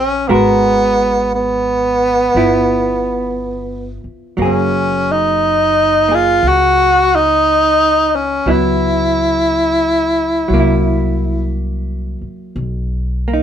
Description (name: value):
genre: jazz ballad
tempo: 59 BPM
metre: 4/4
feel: swing 66% on 8ths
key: unclear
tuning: A4 = 440 Hz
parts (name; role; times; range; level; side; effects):
- clear tenor saxophone; melody; 0.0-11.6 s; Bb3 to Gb4; -13 LUFS; equal; none
- hollow-body jazz guitar; accompaniment; 0.0-13.4 s; Eb3 to Bb4; -18 LUFS; right 1 dB; none
- upright bass; bass; 0.0-13.4 s; Gb1 to Db2; -21 LUFS; equal; none
room: moderate small room reverb, RT60 0.6 s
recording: band playing live in one room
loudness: -12 LUFS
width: side -9 dB against mid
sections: 0.0-13.4 A section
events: none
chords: 0.3 Abm9; 2.3 G6; 4.4 Gbadd9; 8.5 Dbm7; 10.5 C7#11; 12.6 Bmaj7(no3)